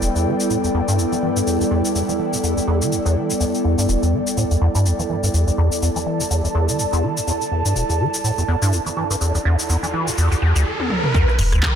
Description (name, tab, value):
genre	acid house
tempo	124 BPM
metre	4/4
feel	swing 57% on 16ths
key	E minor pentatonic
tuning	A4 = 440 Hz
part	warbly tape-like pad	sustained chords	0.0-10.6 s	G3 to D5	-25 LUFS	left 1 dB	chorus, built-in reverb, sidechain pumping
part	liquid acid bass	riff	0.0-11.7 s	E1 to E3	-20 LUFS	equal	phaser, analog chorus, cassette tape, sidechain pumping, digital delay
part	punchy analog drum machine	drums	0.0-11.7 s	handclaps, hi-hat, rim click, shaker, toms	-26 LUFS	left 2 dB	none
part	airy breathy pad	texture	0.0-10.7 s	E4 to A5	-25 LUFS	right 2 dB	chorus, sidechain pumping
part	riser	sound effects	9.1-11.1 s	none	-26 LUFS	right 1 dB	none
part	electronic kick drum	drums	11.1-11.7 s	none	-19 LUFS	equal	none
part	warm sub bass	bass	11.4-11.6 s	E1	-19 LUFS	equal	sidechain pumping
room	light reverb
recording	none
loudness	-17 LUFS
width	side -8 dB against mid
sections	0.0-11.1 A section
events	filter sweep on acid bass 0.0-11.1; riser 9.1-11.1; stop 10.7-11.1; drum fill 10.8-11.1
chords	0.0 Em; 11.1 N.C.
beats	0.02 0.50 0.98 | 1.47 1.95 2.44 2.92 | 3.40 3.89 4.37 4.85 | 5.34 5.82 6.31 6.79 | 7.27 7.76 8.24 8.72 | 9.21 9.69 10.18 10.66 | 11.14 11.63